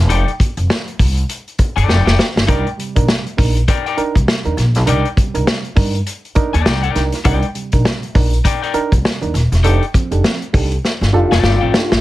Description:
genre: funk.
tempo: 101 BPM.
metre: 4/4.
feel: swing 60% on 16ths.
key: C dorian.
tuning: A4 = 442 Hz.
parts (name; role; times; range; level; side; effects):
upright bass; bass; 0.0-12.0 s; Eb1 to G2; -16 LUFS; equal; none.
electric guitar at the edge of break-up; accompaniment; 0.1-11.8 s; Eb4 to A5; -20 LUFS; left 7 dB; none.
vintage drum kit; drums; 0.1-12.0 s; hi-hat, kick drum, snare drum; -16 LUFS; equal; none.
reed electric piano; stabs; 2.5-11.9 s; C3 to Bb4; -22 LUFS; right 5 dB; overdrive.
mellow tonewheel organ; melody; 11.1-12.0 s; F4; -17 LUFS; left 3 dB; chorus vibrato, slow rotary speaker.
room: little or no reverb.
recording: none.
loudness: -13 LUFS.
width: side -16 dB against mid.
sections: 0.0-12.0 A section.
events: drum fill 1.9-2.5, 10.8-12.0.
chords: 0.1 F13; 2.5 Cm9; 9.6 F13.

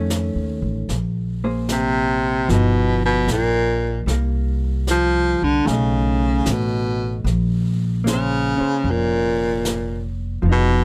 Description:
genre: jazz ballad.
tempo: 76 BPM.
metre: 4/4.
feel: swing 69% on 8ths.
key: Bb minor.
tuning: A4 = 440 Hz.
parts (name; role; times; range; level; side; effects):
hollow-body jazz guitar; accompaniment; 0.0-10.8 s; Eb3 to C5; -28 LUFS; equal; none.
upright bass; bass; 0.0-10.8 s; F1 to F2; -24 LUFS; equal; none.
jazz brush drum kit; drums; 0.1-10.8 s; brushed snare drum, hi-hat, snare drum; -32 LUFS; equal; none.
warm baritone saxophone; melody; 1.7-10.8 s; A#2 to F3; -22 LUFS; equal; none.
room: little or no reverb.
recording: close, detailed microphones.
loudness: -20 LUFS.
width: mono.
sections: 0.0-10.8 A section.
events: none.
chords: 0.0 Faug7; 0.9 Bbsus2; 2.5 G7alt; 4.1 C5; 5.7 B9; 7.3 Bbm9.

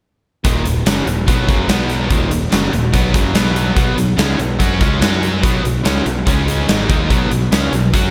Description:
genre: classic rock.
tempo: 144 BPM.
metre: 4/4.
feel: straight.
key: Eb minor.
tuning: A4 = 440 Hz.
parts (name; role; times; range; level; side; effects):
cranked stack guitar; riff; 0.4-8.1 s; Eb2 to F#4; -23 LUFS; equal; overdrive, slapback echo.
cranked stack guitar; riff; 0.4-8.1 s; Eb2 to F#4; -23 LUFS; equal; overdrive, slapback echo.
huge arena drum kit; drums; 0.4-8.0 s; hi-hat, kick drum, snare drum; -19 LUFS; equal; none.
fuzz fingered electric bass; bass; 0.5-8.1 s; Eb1 to F#2; -22 LUFS; equal; overdrive.
room: moderate lush hall reverb, RT60 1.7 s.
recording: big arena sound.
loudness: -16 LUFS.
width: mono.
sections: 0.4-8.1 A section.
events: none.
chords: 0.4 Ebm; 1.7 B5; 2.1 Ebm; 3.4 B5; 5.0 Gb5; 5.4 B5; 6.3 Db5; 6.7 B5.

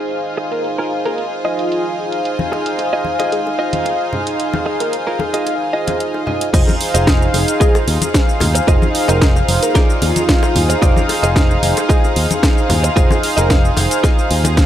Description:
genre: nu-disco, nu disco.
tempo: 112 BPM.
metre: 4/4.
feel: straight.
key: F minor.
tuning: A4 = 440 Hz.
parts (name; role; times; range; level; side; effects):
warm analog pad; accompaniment; 0.0-14.7 s; Eb4 to F5; -19 LUFS; equal; chorus, tape echo.
clear studio violin section; sustained chords; 0.0-14.7 s; Eb4 to Ab5; -26 LUFS; right 1 dB; sidechain pumping, low-pass filter.
house drum kit; drums; 0.1-14.7 s; crash cymbal, hi-hat, shaker, snare drum; -21 LUFS; right 1 dB; overdrive, low-pass filter on hats, low-pass filter on perc, low-pass filter on snare, low-pass filter on cymbals, low-pass filter on room.
direct-recorded clean electric guitar; riff; 0.4-14.5 s; F4 to Eb5; -22 LUFS; right 2 dB; analog chorus, low-pass filter, tape echo.
wide unison lead; melody; 0.5-13.5 s; F4 to Bb4; -24 LUFS; equal; vintage 12-bit sampler grit, analog delay.
congas and bongos; percussion; 2.4-14.5 s; none; -24 LUFS; left 3 dB; none.
picked electric bass with an envelope filter; bass; 6.5-14.7 s; F1 to Eb2; -17 LUFS; equal; sidechain pumping.
electronic kick drum; drums; 6.5-14.7 s; none; -14 LUFS; equal; overdrive.
room: light reverb.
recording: dry, gritty hardware recording.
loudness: -13 LUFS.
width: side -11 dB against mid.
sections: 0.0-6.5 A section; 6.5-14.7 B section.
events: drop 6.5-14.7.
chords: 0.0 Fm7.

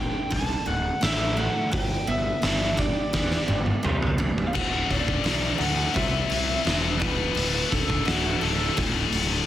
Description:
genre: quiet-loud alternative rock.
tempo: 85 BPM.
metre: 4/4.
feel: straight.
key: D major from 4.5 s.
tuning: A4 = 440 Hz.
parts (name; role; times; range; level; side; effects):
lead guitar through a small cranked amp; melody; 0.0-8.7 s; F#4 to A5; -30 LUFS; equal; overdrive.
picked steel-string acoustic guitar; arpeggios; 0.0-9.5 s; D2 to G4; -34 LUFS; right 4 dB; analog delay.
fuzz picked electric bass; bass; 0.0-9.4 s; D1 to E2; -29 LUFS; equal; overdrive.
oversized low-tuned drum kit; drums; 0.3-9.3 s; crash cymbal, hi-hat, kick drum, snare drum, toms; -26 LUFS; equal; soft clipping on kick.
scooped high-gain guitar; riff; 4.5-9.5 s; D2 to C4; -27 LUFS; left 10 dB; distortion.
room: light reverb, small room ambience.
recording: dense, heavily limited modern master.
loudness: -22 LUFS.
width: side -12 dB against mid.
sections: 0.0-4.5 A section; 4.5-9.5 B section.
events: drum fill 3.1-4.5; lead electric guitar solo 4.5-9.5.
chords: 0.0 D5; 1.7 G; 4.5 D5; 6.0 C; 7.0 D5.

